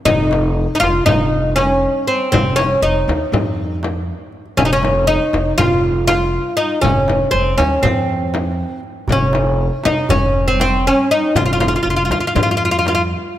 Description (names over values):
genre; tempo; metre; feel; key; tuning
Turkish makam ensemble; 239 BPM (eighths); 9/8; straight; unclear; A4 = 437 Hz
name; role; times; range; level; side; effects
oud; melody; 0.1-13.0 s; C4 to F4; -16 LUFS; equal; none
upright bass; bass; 0.1-13.1 s; F1 to F2; -20 LUFS; equal; none
darbuka; percussion; 0.1-13.4 s; none; -25 LUFS; right 2 dB; none
frame drum; percussion; 0.1-13.0 s; none; -23 LUFS; left 3 dB; none
room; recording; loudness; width
moderate concert hall reverb, RT60 2.5 s; none; -14 LUFS; side -12 dB against mid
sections
0.0-13.4 A section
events
none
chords
none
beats
| 0.07 0.32 0.57 0.82 1.07 1.32 1.57 1.82 2.07 | 2.32 2.57 2.82 3.08 3.33 3.58 3.83 4.08 4.33 | 4.58 4.83 5.08 5.33 5.58 5.83 6.08 6.34 6.59 | 6.84 7.09 7.34 7.59 7.84 8.09 8.34 8.60 8.85 | 9.10 9.35 9.60 9.85 10.10 10.35 10.60 10.85 11.10 | 11.35 11.61 11.86 12.11 12.36 12.61 12.86 13.11 13.36